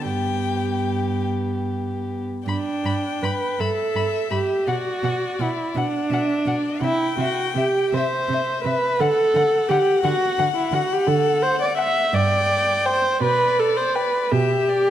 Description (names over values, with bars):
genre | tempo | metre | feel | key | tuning
classical, slow romantic movement for string quartet | 49-58 BPM (dotted quarters) | 6/8 | rubato | G major | A4 = 440 Hz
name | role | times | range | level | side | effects
rich violin | melody | 0.0-14.9 s | D5 to G5 | -28 LUFS | left 9 dB | none
dark violin | second line | 0.0-14.2 s | G4 to B5 | -29 LUFS | left 4 dB | none
warm viola | accompaniment | 0.0-14.9 s | B3 to E5 | -21 LUFS | right 1 dB | none
warm cello | bass | 0.0-14.9 s | G2 to D3 | -26 LUFS | right 3 dB | none
room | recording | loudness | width
moderate scoring stage reverb, RT60 1.8 s | close, detailed microphones | -19 LUFS | side -11 dB against mid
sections
0.0-2.5 A section; 2.5-14.9 A section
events
none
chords
0.1 G; 4.7 Bm; 6.8 C; 9.0 D; 12.1 G5; 13.2 G/B